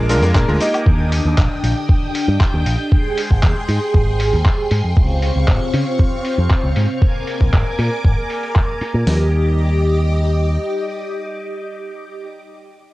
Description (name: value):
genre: nu-disco, nu disco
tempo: 117 BPM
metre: 4/4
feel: straight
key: Eb major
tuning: A4 = 440 Hz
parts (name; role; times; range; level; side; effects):
- bright electric grand piano; accompaniment; 0.0-1.1 s; Ab3 to Eb5; -20 LUFS; equal; cassette tape, tape echo
- string machine, full ensemble; sustained chords; 0.0-12.3 s; C4 to Eb6; -22 LUFS; equal; phaser, ensemble chorus, sidechain pumping, cassette tape
- picked electric bass with an envelope filter; bass; 0.0-10.6 s; Ab1 to Db3; -17 LUFS; equal; none
- dusty soul sampler-style drum kit; drums; 0.1-8.9 s; cabasa, handclaps, hi-hat, woodblock; -26 LUFS; equal; overdrive, low-pass filter on hats, cassette tape, low-pass filter on perc, low-pass filter on snare, low-pass filter on room
- direct-recorded clean electric guitar; riff; 0.2-0.6 s; D4 to Bb4; -28 LUFS; left 2 dB; none
- dusty soul sampler-style drum kit; drums; 0.4-9.2 s; hi-hat, kick drum, snare drum; -15 LUFS; equal; overdrive, cassette tape
room: light reverb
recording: home recording on cassette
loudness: -14 LUFS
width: side -18 dB against mid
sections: 0.0-9.1 A section; 9.1-12.9 B section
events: filter sweep on picked electric bass 0.0-9.1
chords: 0.0 Bb7; 0.9 Ebmaj7; 2.9 Abmaj7; 5.0 Dbmaj7; 7.0 Bb7; 9.1 Ebmaj7